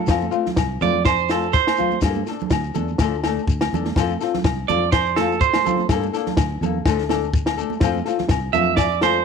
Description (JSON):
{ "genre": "highlife guitar band", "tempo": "124 BPM", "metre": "4/4", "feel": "straight", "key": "F major", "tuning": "A4 = 440 Hz", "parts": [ { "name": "clean electric guitar", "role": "arpeggios", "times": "0.0-9.2 s", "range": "A4 to E5", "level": "-20 LUFS", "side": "right 12 dB", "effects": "slapback echo" }, { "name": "flamenco guitar", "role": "accompaniment", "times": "0.1-9.2 s", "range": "F3 to A4", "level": "-25 LUFS", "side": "left 12 dB", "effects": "none" }, { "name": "fingered electric bass", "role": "bass", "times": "0.1-9.2 s", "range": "C2 to G2", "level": "-26 LUFS", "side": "equal", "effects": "none" }, { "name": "compact cocktail drum kit", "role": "drums", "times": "0.1-9.1 s", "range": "kick drum, snare drum", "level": "-23 LUFS", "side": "left 1 dB", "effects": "none" }, { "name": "agogo bells", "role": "percussion", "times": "0.1-9.2 s", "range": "none", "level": "-30 LUFS", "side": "left 12 dB", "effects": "none" }, { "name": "shekere", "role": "percussion", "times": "0.1-9.2 s", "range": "none", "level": "-28 LUFS", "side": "left 6 dB", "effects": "none" }, { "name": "congas", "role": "percussion", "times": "0.2-9.1 s", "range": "none", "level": "-28 LUFS", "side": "right 12 dB", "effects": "none" } ], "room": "light reverb, studio reverb", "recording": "1960s-style stereo with parts hard left and right", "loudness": "-18 LUFS", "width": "side -6 dB against mid", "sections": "0.0-9.2 A section", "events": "clean electric guitar solo 0.0-9.2", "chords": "0.1 F; 2.0 Gmadd9; 3.0 Dm; 4.0 F; 5.9 Gmadd9; 6.9 Dm; 7.8 F", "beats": "| 0.10 0.58 1.06 1.55 | 2.03 2.51 3.00 3.48 | 3.96 4.45 4.93 5.41 | 5.89 6.38 6.86 7.34 | 7.82 8.30 8.78" }